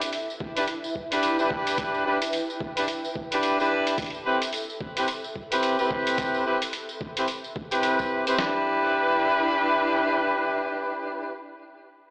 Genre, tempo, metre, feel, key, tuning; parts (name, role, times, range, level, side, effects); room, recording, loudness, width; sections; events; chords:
glitch hop; 109 BPM; 4/4; swing 60% on 16ths; E minor pentatonic; A4 = 439 Hz
electronic hi-hat; drums; 0.0-8.4 s; -31 LUFS; equal
tambourine; percussion; 0.0-8.4 s; -36 LUFS; equal
airy breathy pad; texture; 0.0-11.3 s; E4 to G5; -34 LUFS; equal; chorus, sidechain pumping
boom bap sampler-style drum kit; drums; 0.4-8.5 s; kick drum, snare drum; -33 LUFS; equal
clear horn section; stabs; 0.6-11.3 s; C4 to B4; -24 LUFS; equal; vintage 12-bit sampler grit, sidechain pumping, tape echo
moderate studio reverb, RT60 0.7 s; played on a big sound system in a bare room, large studio reverb, AM radio sound; -23 LUFS; side -25 dB against mid
0.0-8.4 A section; 8.4-10.6 B section
fade-out on analog synth pad 0.0-8.4
0.0 Em7; 4.0 Am9; 8.4 Em7